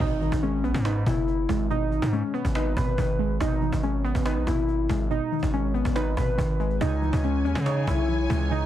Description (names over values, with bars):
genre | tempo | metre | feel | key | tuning
hip hop, trap | 141 BPM | 4/4 | half-time | G# minor | A4 = 441 Hz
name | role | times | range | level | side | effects
warbly lo-fi synth keys | melody | 0.0-8.7 s | C#4 to B4 | -28 LUFS | left 1 dB | chorus
warbly dusty pluck | accompaniment | 0.0-8.7 s | B2 to C#5 | -30 LUFS | right 1 dB | chorus
distorted 808-style bass | bass | 0.0-8.7 s | F#1 to C#3 | -26 LUFS | equal | distortion
cajon | drums | 0.0-8.6 s | none | -34 LUFS | equal | none
impact | sound effects | 0.0-1.7 s | none | -38 LUFS | right 1 dB | none
dark studio string section | sustained chords | 6.8-8.7 s | C#4 to G#5 | -34 LUFS | right 1 dB | none
room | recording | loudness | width
little or no reverb | dense, heavily limited modern master | -23 LUFS | side -12 dB against mid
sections
0.0-8.7 A section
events
impact 0.0-1.7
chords
0.0 G#m; 6.8 C#m